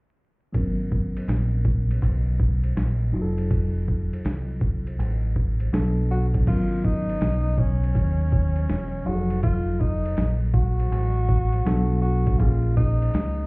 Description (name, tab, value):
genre	hip hop, jazz-hop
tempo	81 BPM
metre	4/4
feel	swing 65% on 16ths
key	G# dorian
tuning	A4 = 438 Hz
part	mellow tine electric piano	accompaniment	0.5-13.5 s	F3 to A#4	-29 LUFS	equal	medium stereo tremolo, low-pass filter
part	deep dub fingered electric bass	bass	0.5-13.5 s	E1 to D#2	-23 LUFS	equal	none
part	boom bap sampler-style drum kit	drums	0.5-13.4 s	crash cymbal, hi-hat, kick drum, ride cymbal, snare drum	-25 LUFS	equal	overdrive
part	breathy tenor saxophone	melody	6.1-13.5 s	C#4 to F#4	-30 LUFS	left 1 dB	none
room	light reverb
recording	heard muffled through a wall, club reverb, vinyl crackle, EQ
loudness	-20 LUFS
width	side -29 dB against mid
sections	0.5-6.5 A section; 6.5-13.5 B section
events	filter sweep on tine electric piano 0.5-6.5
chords	0.5 G#m11; 3.1 F7b9; 5.7 Bm7; 6.5 G#m11; 9.1 F7b9; 11.7 Bm7; 12.4 A#m7